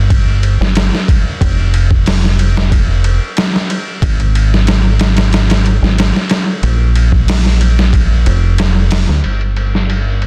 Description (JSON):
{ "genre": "trip hop", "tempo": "92 BPM", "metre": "4/4", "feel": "straight", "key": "unclear", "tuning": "A4 = 437 Hz", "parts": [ { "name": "deep dub fingered electric bass", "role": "bass", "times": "0.0-10.3 s", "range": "F1 to D2", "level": "-14 LUFS", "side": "equal", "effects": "none" }, { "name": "trip hop sampler-style drum kit", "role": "drums", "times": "0.1-10.3 s", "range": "hi-hat, kick drum, ride cymbal, snare drum", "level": "-16 LUFS", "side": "equal", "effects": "low-pass filter on kick, low-pass filter on cymbals, low-pass filter on hats, low-pass filter on snare, low-pass filter on room" }, { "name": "deep dark ambient pad", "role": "sustained chords", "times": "10.1-10.3 s", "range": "G3 to D5", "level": "-35 LUFS", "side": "equal", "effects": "none" } ], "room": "little or no reverb", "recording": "dense, heavily limited modern master", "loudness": "-13 LUFS", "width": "mono", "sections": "0.0-9.2 A section; 9.2-10.3 B section", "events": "none", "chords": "0.0 N.C.; 6.6 Bb5; 9.2 Gm7", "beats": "0.10 0.76 | 1.41 2.06 2.71 3.37 | 4.02 4.67 5.32 5.97 | 6.63 7.28 7.93 8.58 | 9.23 9.89" }